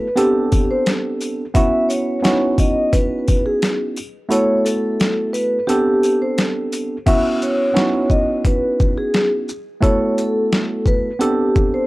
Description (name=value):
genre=hip hop, boom-bap hip-hop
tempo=87 BPM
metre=4/4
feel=swing 55% on 16ths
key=C# minor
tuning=A4 = 438 Hz
part: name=vibraphone with soft mallets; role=melody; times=0.0-11.9 s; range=G4 to E5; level=-20 LUFS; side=left 1 dB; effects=tape echo
part: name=tine electric piano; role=accompaniment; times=0.0-11.9 s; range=A3 to A4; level=-19 LUFS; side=right 2 dB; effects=cassette tape
part: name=boom bap sampler-style drum kit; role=drums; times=0.2-11.7 s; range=crash cymbal, hi-hat, kick drum, shaker, snare drum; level=-18 LUFS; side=equal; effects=overdrive
part: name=sleigh bells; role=percussion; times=0.2-6.9 s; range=none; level=-34 LUFS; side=left 3 dB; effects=none
room=little or no reverb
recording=dry, gritty hardware recording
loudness=-15 LUFS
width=side -20 dB against mid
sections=0.0-7.1 A section; 7.1-11.9 A section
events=kick muted 4.3-7.1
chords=0.2 Am11; 1.5 C#m11; 4.3 F#m7; 5.7 Am11; 7.1 C#m11; 9.8 F#m7; 11.2 Am11